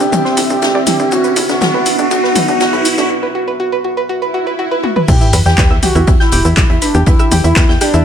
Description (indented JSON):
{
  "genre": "melodic techno",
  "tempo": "121 BPM",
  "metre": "4/4",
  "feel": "straight",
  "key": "E minor",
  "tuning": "A4 = 441 Hz",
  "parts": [
    { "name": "expressive portamento lead", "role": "melody", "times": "0.0-8.0 s", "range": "D4 to G4", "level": "-17 LUFS", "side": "right 1 dB", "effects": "chorus, sidechain pumping, tape echo" },
    { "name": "deep dark ambient pad", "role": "sustained chords", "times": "0.0-8.0 s", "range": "B3 to E5", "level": "-24 LUFS", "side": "equal", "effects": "chorus, built-in reverb, sidechain pumping" },
    { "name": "soft round pluck", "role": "arpeggios", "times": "0.0-8.0 s", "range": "D4 to G6", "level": "-18 LUFS", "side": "right 2 dB", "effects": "chorus, sidechain pumping, dub echo" },
    { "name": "tight sequencer bass", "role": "bass", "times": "0.0-8.0 s", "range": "E1 to E2", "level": "-16 LUFS", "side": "equal", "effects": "tube saturation, sidechain pumping, high-pass filter" },
    { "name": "deep house drum kit", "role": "drums", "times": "0.0-8.0 s", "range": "crash cymbal, handclaps, hi-hat, rim click, shaker, toms", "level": "-17 LUFS", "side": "left 2 dB", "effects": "overdrive" },
    { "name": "soft-mallet drum kit", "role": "drums", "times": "0.0-8.0 s", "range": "hi-hat, snare drum", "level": "-25 LUFS", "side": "left 2 dB", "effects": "sidechain pumping on hats, high-pass filter on hats, high-pass filter on snare, high-pass filter on room, dub echo" },
    { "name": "riser, swell and sub drop", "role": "sound effects", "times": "0.0-7.1 s", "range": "none", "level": "-20 LUFS", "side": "equal", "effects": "none" },
    { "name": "warbly tape-like pad", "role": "texture", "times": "0.0-8.0 s", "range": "B3 to G5", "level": "-24 LUFS", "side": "equal", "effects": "chorus, built-in reverb, sidechain pumping" },
    { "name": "electronic kick drum", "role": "drums", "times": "5.1-7.7 s", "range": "none", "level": "-12 LUFS", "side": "equal", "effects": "overdrive" }
  ],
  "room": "moderate plate reverb, RT60 1.1 s",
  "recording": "echo-heavy mix",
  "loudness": "-10 LUFS",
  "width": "side -8 dB against mid",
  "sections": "0.0-5.1 A section; 5.1-8.0 B section",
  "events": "build-up 0.0-5.1; riser 0.0-3.1; filter sweep on synth arpeggio sound 0.0-5.1; filter sweep on analog synth lead 0.0-5.1; break 3.1-5.1; swell 4.2-5.1; drum fill 4.8; drop 5.1-8.0; impact 5.1-7.1",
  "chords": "0.0 Cadd9; 1.1 Bsus4; 5.1 Em",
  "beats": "0.12 0.62 | 1.12 1.61 2.11 2.60 | 3.10 3.60 4.09 4.59 | 5.08 5.58 6.08 6.57 | 7.07 7.56"
}